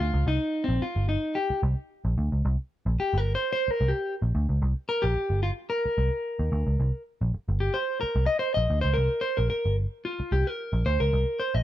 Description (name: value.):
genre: funk.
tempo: 110 BPM.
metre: 4/4.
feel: straight.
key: C minor.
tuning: A4 = 440 Hz.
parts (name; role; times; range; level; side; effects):
clean electric guitar; accompaniment; 0.0-11.6 s; C4 to Eb5; -27 LUFS; left 1 dB; none.
vintage muted picked electric bass; bass; 0.0-11.6 s; G1 to Eb2; -24 LUFS; equal; none.
room: little or no reverb.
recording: dark, warm production.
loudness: -24 LUFS.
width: side -13 dB against mid.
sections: 0.0-11.6 A section.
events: clean electric guitar solo 0.0-11.6.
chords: 0.0 C7(no3).